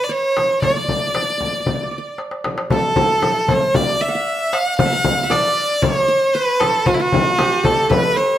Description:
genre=Arabic maqam ensemble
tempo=115 BPM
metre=4/4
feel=straight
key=D maqam rast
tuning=A4 = 441 Hz
part: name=bright violin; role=melody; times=0.0-8.4 s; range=E4 to F5+50c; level=-17 LUFS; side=right 1 dB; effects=plate reverb
part: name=qanun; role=second line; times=0.0-8.4 s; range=F#4-50c to F#5-50c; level=-24 LUFS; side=right 2 dB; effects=none
part: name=darbuka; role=percussion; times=0.4-8.2 s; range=none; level=-22 LUFS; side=left 2 dB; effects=none
part: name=frame drum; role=percussion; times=0.4-8.0 s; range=none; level=-22 LUFS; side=left 2 dB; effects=none
room=moderate studio reverb, RT60 0.6 s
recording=none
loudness=-15 LUFS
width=side -12 dB against mid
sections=0.0-2.7 A section; 2.7-8.4 B section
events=drum fill 2.2-2.7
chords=none

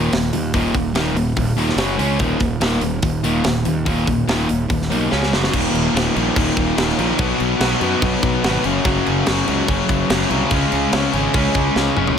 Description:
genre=hard rock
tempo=144 BPM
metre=4/4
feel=straight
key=Eb minor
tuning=A4 = 440 Hz
part: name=cranked stack guitar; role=riff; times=0.0-12.2 s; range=Eb2 to Db4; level=-21 LUFS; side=left 10 dB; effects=overdrive
part: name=sludgy distorted guitar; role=riff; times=0.0-12.2 s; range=Eb2 to Db4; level=-21 LUFS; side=right 10 dB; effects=overdrive
part: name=fuzz fingered electric bass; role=bass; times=0.0-12.1 s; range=Eb1 to F#2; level=-23 LUFS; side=equal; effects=overdrive
part: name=tight metal drum kit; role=drums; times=0.1-12.2 s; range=crash cymbal, hi-hat, kick drum, snare drum, toms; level=-22 LUFS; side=equal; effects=none
room=light reverb, small room ambience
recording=none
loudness=-16 LUFS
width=side -7 dB against mid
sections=0.0-5.5 A section; 5.5-12.2 B section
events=drum fill 5.1-5.5, 11.8-12.2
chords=0.0 Eb5; 1.8 Gb5; 2.0 Db5; 2.2 Eb5; 5.1 Db5; 5.3 Gb5; 5.5 Eb5; 7.2 B5; 8.6 Gb5; 10.5 Db5

